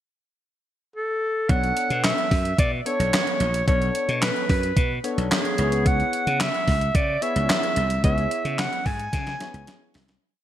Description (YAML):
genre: early-eighties boogie funk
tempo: 110 BPM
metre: 4/4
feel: straight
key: B dorian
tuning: A4 = 440 Hz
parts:
  - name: clear clarinet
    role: melody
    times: 1.0-9.9 s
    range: G#4 to G#5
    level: -25 LUFS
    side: right 1 dB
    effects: none
  - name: barky tine electric piano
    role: accompaniment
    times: 1.5-10.0 s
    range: B3 to C#5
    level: -30 LUFS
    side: left 3 dB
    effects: analog chorus
  - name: slap bass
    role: bass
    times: 1.5-10.2 s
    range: A#1 to C#3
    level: -25 LUFS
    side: equal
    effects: none
  - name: clean 12-bit digital drum machine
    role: drums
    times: 1.5-10.2 s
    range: handclaps, hi-hat, kick drum, snare drum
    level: -24 LUFS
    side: equal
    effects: overdrive, gated reverb
room: light reverb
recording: bright 1980s-style digital production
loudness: -20 LUFS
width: side -11 dB against mid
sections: 0.0-1.5 pickup bar; 1.5-10.2 verse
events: fade-out 8.0-10.2; drum fill 9.1-10.2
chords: 0.0 N.C.; 1.5 Bm9; 5.6 C#m7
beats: 0.40 0.95 | 1.49 2.04 2.58 3.13 | 3.68 4.22 4.77 5.31 | 5.86 6.40 6.95 7.49 | 8.04 8.59 9.13 9.68